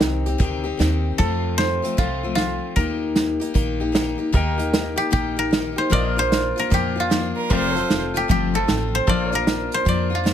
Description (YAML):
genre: honky-tonk and classic country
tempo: 152 BPM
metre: 4/4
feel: swing 64% on 8ths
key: unclear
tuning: A4 = 444 Hz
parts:
  - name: koto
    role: melody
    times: 0.0-10.3 s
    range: F4 to D5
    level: -23 LUFS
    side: equal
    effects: none
  - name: picked steel-string acoustic guitar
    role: accompaniment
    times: 0.0-10.3 s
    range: F2 to G4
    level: -24 LUFS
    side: left 6 dB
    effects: none
  - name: upright bass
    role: bass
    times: 0.0-10.3 s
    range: F1 to F2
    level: -26 LUFS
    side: right 1 dB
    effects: none
  - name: unplugged drum kit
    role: drums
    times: 0.0-10.3 s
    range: hi-hat, kick drum, snare drum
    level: -22 LUFS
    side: right 2 dB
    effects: none
  - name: pedal steel guitar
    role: sustained chords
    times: 4.3-10.3 s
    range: A4 to G5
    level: -29 LUFS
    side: left 1 dB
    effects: none
  - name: clear fiddle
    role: second line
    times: 7.4-8.0 s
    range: Bb4 to C5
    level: -26 LUFS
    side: right 8 dB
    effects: none
room: light reverb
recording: close, detailed microphones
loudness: -18 LUFS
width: side -10 dB against mid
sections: 0.0-4.3 A section; 4.3-10.3 B section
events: none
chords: 0.0 Cm; 1.2 F; 2.8 Eb; 5.9 Bb; 7.5 F; 9.1 Bb